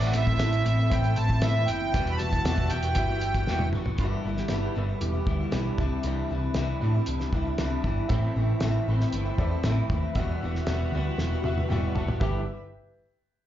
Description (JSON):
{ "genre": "folk rock and heartland rock", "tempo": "117 BPM", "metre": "4/4", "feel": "straight", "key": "G major", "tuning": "A4 = 441 Hz", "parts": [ { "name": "accordion", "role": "melody", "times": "0.0-3.7 s", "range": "E5 to B5", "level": "-30 LUFS", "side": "right 3 dB", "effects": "light tremolo tuning, slapback echo" }, { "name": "bright upright piano", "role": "accompaniment", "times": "0.0-3.7, 8.1-12.4 s", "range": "E4 to A5", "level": "-40 LUFS", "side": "right 1 dB", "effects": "slapback echo" }, { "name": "picked old ladder-braced acoustic guitar", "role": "accompaniment", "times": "0.0-12.4 s", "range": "E2 to G4", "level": "-34 LUFS", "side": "left 6 dB", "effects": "slapback echo" }, { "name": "dark studio string section", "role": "sustained chords", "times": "0.0-4.0, 8.1-12.6 s", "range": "G4 to F#5", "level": "-41 LUFS", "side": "left 2 dB", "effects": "none" }, { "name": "electric guitar through a small old amp", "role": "riff", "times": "0.0-12.4 s", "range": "E2 to F#4", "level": "-33 LUFS", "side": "equal", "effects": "ensemble chorus, slapback echo" }, { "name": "hollow-body short-scale picked electric bass", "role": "bass", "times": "0.0-12.4 s", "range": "E1 to A2", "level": "-27 LUFS", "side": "equal", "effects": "none" }, { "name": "cloth-damped thuddy drum kit", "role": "drums", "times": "0.0-12.3 s", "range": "hi-hat, kick drum, snare drum, toms", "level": "-30 LUFS", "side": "equal", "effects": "none" }, { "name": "electric slide guitar", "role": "second line", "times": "4.0-6.0, 12.2-12.5 s", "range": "E4 to A4", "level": "-38 LUFS", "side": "right 5 dB", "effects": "slapback echo" } ], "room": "light reverb", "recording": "live gig heard through the venue's PA, club reverb, nothing above 7.5 kHz", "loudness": "-24 LUFS", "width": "side -12 dB against mid", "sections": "0.0-4.0 A section; 4.0-12.2 B section; 12.2-13.5 C section", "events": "drum fill 3.5-4.0, 11.2-12.2; upright piano fill 11.4-12.2", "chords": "0.0 Am; 1.9 Emadd9; 4.0 G6; 5.8 Cadd9; 8.1 Am; 10.2 Emadd9; 12.2 G6" }